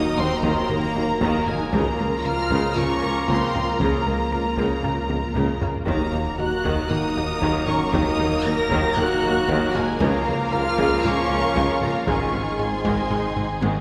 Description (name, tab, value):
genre	cinematic, hybrid orchestral and electronic film score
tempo	116 BPM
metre	4/4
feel	straight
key	Bb minor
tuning	A4 = 439 Hz
part	warm symphonic violin section	melody	0.0-13.6 s	Ab5 to Bb6	-32 LUFS	equal	none
part	warm symphonic violin section	second line	0.0-13.8 s	Ab4 to Bb5	-31 LUFS	equal	none
part	rich symphonic viola section	accompaniment	0.0-13.8 s	Db3 to Gb4	-32 LUFS	equal	none
part	clear trombone section	sustained chords	0.0-13.8 s	Eb3 to Bb3	-34 LUFS	equal	none
part	soft additive organ-like pad	sustained chords	0.0-13.8 s	Eb3 to Eb5	-36 LUFS	equal	none
part	warm French horn section	sustained chords	0.0-13.6 s	Ab3 to Bb4	-30 LUFS	equal	none
part	resonant blip pluck	arpeggios	0.0-13.8 s	Eb3 to Bb4	-36 LUFS	equal	none
part	fat analog bass	riff	0.0-13.8 s	Db2 to Ab3	-32 LUFS	equal	none
part	punchy sub bass	bass	0.0-13.8 s	Eb1 to Db2	-39 LUFS	equal	none
part	warm tuba	bass	0.0-13.7 s	Ab1 to Eb2	-33 LUFS	equal	none
part	dark symphonic double bass section	bass	0.2-13.7 s	Ab1 to Eb2	-36 LUFS	equal	none
part	rich symphonic cello section	bass	0.2-13.7 s	Db2 to Ab2	-33 LUFS	equal	none
part	solo taiko drums	drums	0.4-13.8 s	none	-33 LUFS	equal	none
room	wet scoring stage reverb, RT60 1.9 s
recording	heard from further back in the room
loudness	-22 LUFS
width	mono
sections	0.0-13.8 A section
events	drum fill 5.1-5.9, 13.4-13.8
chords	0.0 Ebm; 1.7 Bbm/Db; 5.9 Ebm; 10.0 Bbm/Db; 12.1 Ab